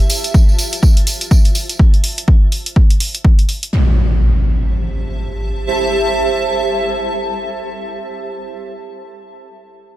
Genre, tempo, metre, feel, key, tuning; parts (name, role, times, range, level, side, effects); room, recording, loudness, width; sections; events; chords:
piano house; 124 BPM; 4/4; swing 59% on 16ths; C major; A4 = 444 Hz
electronic hi-hat; drums; 0.0-3.7 s; -21 LUFS; right 1 dB; overdrive, small room ambience
tambourine; percussion; 0.0-1.8 s; -24 LUFS; right 2 dB
granular cloud pad; texture; 0.0-8.1 s; F4 to A5; -20 LUFS; right 2 dB; built-in reverb, sidechain pumping
electronic kick drum; drums; 0.3-3.4 s; -10 LUFS; equal; overdrive, small room ambience
impact; sound effects; 3.7-7.9 s; -16 LUFS; equal
light reverb, small room ambience; -12 LUFS; side -15 dB against mid
0.0-3.7 A section; 3.7-7.6 B section
fade-out on ambient pad 0.0-1.8
0.0 Fmaj7; 1.6 Dm7; 3.7 C6